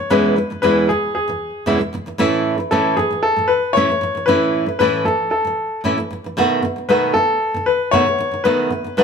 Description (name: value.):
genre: pop.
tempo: 115 BPM.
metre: 4/4.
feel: straight.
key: unclear.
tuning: A4 = 440 Hz.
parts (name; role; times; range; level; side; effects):
bright upright piano; melody; 0.0-9.0 s; G#4 to C#5; -17 LUFS; left 3 dB; none.
nylon-string guitar; accompaniment; 0.0-9.0 s; E2 to F#4; -18 LUFS; right 2 dB; none.
room: moderate large studio reverb, RT60 1.2 s.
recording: band playing live in one room.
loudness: -15 LUFS.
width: side -6 dB against mid.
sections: 0.0-9.0 A section.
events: none.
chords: 0.0 E6; 2.2 A; 6.4 B7.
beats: | 0.11 0.63 1.15 1.67 | 2.20 2.72 3.24 3.76 | 4.28 4.80 5.33 5.85 | 6.37 6.89 7.41 7.93 | 8.45 8.97.